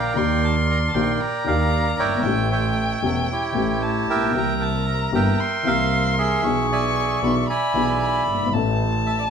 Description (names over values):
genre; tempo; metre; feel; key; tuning
tango; 115 BPM; 4/4; rubato; unclear; A4 = 440 Hz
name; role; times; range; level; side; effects
bandoneon; melody; 0.0-9.2 s; E4 to B5; -23 LUFS; right 4 dB; none
warm violin; second line; 0.0-9.3 s; G5 to C#6; -26 LUFS; left 3 dB; none
dark upright piano; accompaniment; 0.0-9.3 s; E1 to A4; -25 LUFS; left 5 dB; none
clear double bass; bass; 0.0-9.3 s; E1 to Eb2; -24 LUFS; right 2 dB; none
room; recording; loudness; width
moderate large studio reverb, RT60 1.0 s; minimal, uncompressed stereo recording; -18 LUFS; side -7 dB against mid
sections
0.0-9.3 A section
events
none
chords
0.2 Ebmaj7; 2.3 A7; 4.4 C7; 6.4 E7/B; 8.5 A